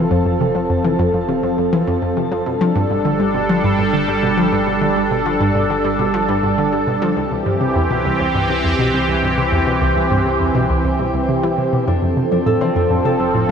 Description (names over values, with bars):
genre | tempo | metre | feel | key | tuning
ambient, sequencer-driven space music | 102 BPM | 4/4 | straight | unclear | A4 = 442 Hz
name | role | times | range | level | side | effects
sweeping resonant pad | sustained chords | 0.0-13.5 s | E3 to A4 | -17 LUFS | right 1 dB | chorus, shimmer reverb
analog pluck | riff | 0.0-13.5 s | C2 to G3 | -19 LUFS | equal | chorus, analog delay
round analog bass | bass | 0.0-13.5 s | F1 to C2 | -31 LUFS | equal | none
concert harp | arpeggios | 11.9-13.5 s | C4 to A4 | -22 LUFS | moving between left 9 dB and left 1 dB | auto-pan, analog delay, shimmer reverb
room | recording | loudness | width
wet lush hall reverb, RT60 3.0 s | dreamy mix soaked in reverb | -15 LUFS | side -7 dB against mid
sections
0.0-13.5 A section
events
fade-in on analog synth bass 0.0-13.5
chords
0.0 F; 2.5 Gsus2; 7.2 C; 11.9 F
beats
| 0.11 0.70 1.29 1.88 | 2.46 3.05 3.64 4.23 | 4.82 5.40 5.99 6.58 | 7.17 7.76 8.35 8.93 | 9.52 10.11 10.70 11.29 | 11.88 12.46 13.05